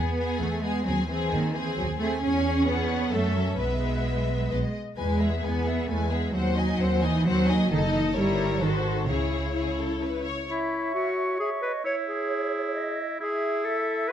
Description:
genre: classical, dramatic, fast romantic movement for symphony orchestra.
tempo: 132 BPM.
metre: 3/4.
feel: straight.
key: C# minor from 7.7 s.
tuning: A4 = 440 Hz.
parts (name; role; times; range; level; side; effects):
warm symphonic violin section; melody; 0.0-10.3 s; B#4 to G#5; -34 LUFS; left 3 dB; none.
warm symphonic violin section; second line; 0.0-10.5 s; G#4 to D#5; -33 LUFS; left 4 dB; none.
warm symphonic viola section; accompaniment; 0.0-10.3 s; G#3 to F#4; -32 LUFS; left 1 dB; none.
rich symphonic cello section; bass; 0.0-10.3 s; C#3 to C#4; -28 LUFS; right 1 dB; none.
warm symphonic double bass section; bass; 0.0-10.3 s; F#1 to F#2; -29 LUFS; right 1 dB; none.
bright clarinet; second line; 10.5-14.1 s; E4 to C#5; -28 LUFS; left 2 dB; none.
small flute group; second line; 10.5-14.1 s; C#5 to E5; -32 LUFS; right 3 dB; none.
warm oboe; second line; 10.5-14.1 s; E4 to C#5; -31 LUFS; right 2 dB; none.
room: moderate recital hall reverb, RT60 1.4 s.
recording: none.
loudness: -24 LUFS.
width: side -10 dB against mid.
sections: 0.0-10.5 A section; 10.5-14.1 B section.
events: none.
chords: 0.0 E; 0.9 G#7/D#; 2.2 C#m/E; 3.1 F#m7; 3.6 E/B; 4.5 B; 5.0 E; 6.4 G#7/D#; 7.7 D#dim/F#; 8.2 Gdim7; 8.6 G#7b9; 9.1 C#m; 10.5 C#m/E; 13.2 E.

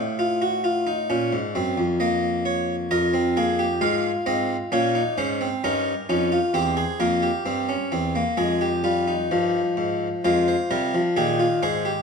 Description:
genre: classical, baroque-style 4-part fugue for harpsichord.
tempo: 66 BPM.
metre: 4/4.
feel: straight.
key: unclear.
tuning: A4 = 440 Hz.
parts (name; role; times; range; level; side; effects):
harpsichord; solo; 0.0-12.0 s; E2 to F5; -20 LUFS; equal; none.
room: moderate recital hall reverb, RT60 1.5 s.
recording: dark, warm production.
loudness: -20 LUFS.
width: side -5 dB against mid.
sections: 0.0-10.2 A section; 10.2-12.0 B section.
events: none.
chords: 0.0 F/A; 1.1 Bbm; 2.9 Fm; 4.7 Gdim; 6.5 C/E; 8.4 Fm.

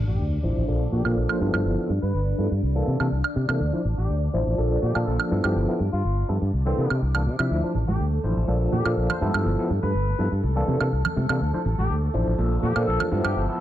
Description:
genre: filtered disco house.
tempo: 123 BPM.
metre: 4/4.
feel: straight.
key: D minor.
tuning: A4 = 440 Hz.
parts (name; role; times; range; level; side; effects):
string machine, full ensemble; sustained chords; 0.0-13.6 s; D4 to D5; -34 LUFS; equal; phaser, ensemble chorus, low-pass filter.
modern bright fingered electric bass; bass; 0.0-13.5 s; G1 to C3; -23 LUFS; equal; low-pass filter.
sub drop; sound effects; 0.0-1.7 s; none; -31 LUFS; equal; none.
brilliant horn section; melody; 0.1-13.4 s; C4 to C5; -34 LUFS; left 1 dB; low-pass filter, tape echo.
overdriven tine electric piano; accompaniment; 0.4-13.6 s; E3 to E5; -27 LUFS; equal; fast tremolo, phaser, low-pass filter.
woodblock; drums; 1.1-13.3 s; none; -30 LUFS; right 7 dB; overdrive, low-pass filter on hats, small room ambience, low-pass filter on snare, low-pass filter on perc, low-pass filter on cymbals.
tambourine and congas; percussion; 7.5-13.5 s; none; -33 LUFS; right 2 dB; low-pass filter on perc.
room: light reverb.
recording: none.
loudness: -21 LUFS.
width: side -12 dB against mid.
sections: 0.0-13.6 A section.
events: impact 0.0-1.7; filter sweep 0.0-13.6.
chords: 0.0 Dm9; 0.7 Bbmaj7; 1.4 G13; 2.6 C13; 3.6 Dm9; 4.6 Bbmaj7; 5.3 G13; 6.5 C13; 7.5 Dm9; 8.5 Bbmaj7; 9.2 G13; 10.4 C13; 11.4 Dm9; 12.4 Bbmaj7.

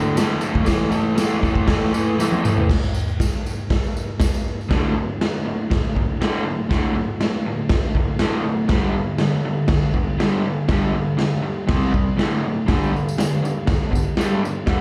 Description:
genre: garage rock duo or trio.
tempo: 120 BPM.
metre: 4/4.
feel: straight.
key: unclear.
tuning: A4 = 440 Hz.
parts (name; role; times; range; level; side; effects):
raw garage guitar; riff; 0.0-14.8 s; D2 to C4; -23 LUFS; equal; overdrive, slapback echo.
raw garage drum kit; drums; 0.2-14.8 s; crash cymbal, hi-hat, kick drum, snare drum, toms; -23 LUFS; equal; none.
tambourine; percussion; 0.2-4.7, 12.8-14.6 s; none; -41 LUFS; equal; none.
room: moderate club reverb, RT60 0.6 s.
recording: live gig heard through the venue's PA, club reverb.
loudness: -21 LUFS.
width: mono.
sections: 0.0-2.7 A section; 2.7-4.7 B section; 4.7-14.8 C section.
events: drum fill 2.2-2.7.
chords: 0.0 D5; 0.7 A5; 2.7 N.C.; 4.7 D5; 8.7 G5; 11.7 C5; 12.2 D5; 12.7 G5.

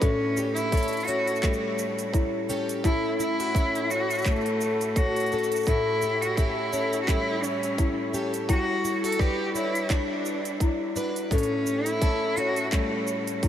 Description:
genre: folktronica.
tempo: 85 BPM.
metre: 4/4.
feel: swing 56% on 16ths.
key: A mixolydian.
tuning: A4 = 440 Hz.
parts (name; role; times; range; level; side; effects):
clear cello; melody; 0.0-13.4 s; A3 to A4; -28 LUFS; equal; analog delay.
large celesta; second line; 0.0-13.5 s; E4 to C#5; -30 LUFS; left 3 dB; diffuse ambient delay.
picked plugged-in twelve-string acoustic guitar; arpeggios; 0.0-13.5 s; A2 to B4; -31 LUFS; equal; analog delay.
electronic kick drum; drums; 0.0-13.5 s; none; -24 LUFS; equal; overdrive.
organic electronic drum kit; drums; 0.0-13.5 s; cabasa, handclaps, hi-hat; -37 LUFS; right 3 dB; overdrive.
room: wet huge ambient reverb, RT60 8.3 s.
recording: dreamy mix soaked in reverb.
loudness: -23 LUFS.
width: side -10 dB against mid.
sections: 0.0-13.5 A section.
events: none.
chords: 0.0 A7; 2.8 F#m7/A; 5.7 A7; 8.5 Gmaj7; 11.3 A7.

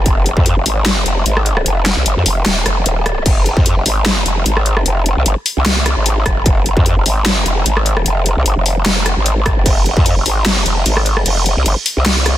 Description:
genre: heavy wobble dubstep.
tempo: 150 BPM.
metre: 4/4.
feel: swing 55% on 16ths, half-time.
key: F minor.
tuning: A4 = 440 Hz.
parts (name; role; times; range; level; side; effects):
growl bass; bass; 0.0-12.3 s; Eb1 to F2; -14 LUFS; equal; chorus, overdrive.
dubstep drum kit; drums; 0.1-12.3 s; crash cymbal, hi-hat, rim click, snare drum; -17 LUFS; equal; none.
electronic kick drum; drums; 0.1-0.4, 3.3-3.6, 6.3-6.8, 9.5-10.0 s; none; -14 LUFS; equal; distortion.
room: light reverb, digital ambience.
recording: dense, heavily limited modern master.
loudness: -12 LUFS.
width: side -13 dB against mid.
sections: 0.0-12.4 A section.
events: kick drops out 2.5-3.3.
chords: none.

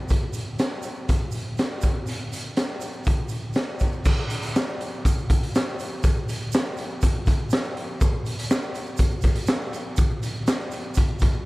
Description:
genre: rock.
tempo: 122 BPM.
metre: 4/4.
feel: straight.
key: none.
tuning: none.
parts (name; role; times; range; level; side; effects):
raw garage drum kit; drums; 0.1-11.3 s; crash cymbal, hi-hat, kick drum, snare drum; -22 LUFS; equal; none.
tube shaker; percussion; 0.1-11.4 s; none; -43 LUFS; right 9 dB; none.
room: little or no reverb.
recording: none.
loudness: -22 LUFS.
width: side -21 dB against mid.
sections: 0.0-4.1 A section; 4.1-11.5 B section.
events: none.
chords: none.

